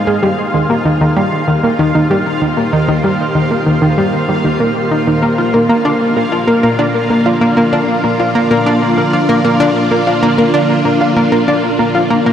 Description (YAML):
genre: ambient, sequencer-driven space music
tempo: 96 BPM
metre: 4/4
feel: straight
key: unclear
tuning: A4 = 440 Hz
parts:
  - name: string machine, full ensemble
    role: sustained chords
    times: 0.0-12.3 s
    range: Bb3 to Eb5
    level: -16 LUFS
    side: equal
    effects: ensemble chorus
  - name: analog pluck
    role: riff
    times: 0.0-12.3 s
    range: Eb3 to F4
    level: -12 LUFS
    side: equal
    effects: chorus, tape echo
  - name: bubbling stepped-filter texture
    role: texture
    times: 0.0-12.3 s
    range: F4 to F5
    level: -21 LUFS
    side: equal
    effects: chorus, built-in reverb
room: wet shimmer reverb, RT60 8.9 s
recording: dark, warm production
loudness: -10 LUFS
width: side -9 dB against mid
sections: 0.0-12.3 A section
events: fade-in on string machine 0.0-12.3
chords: 0.2 Eb6; 5.2 Bb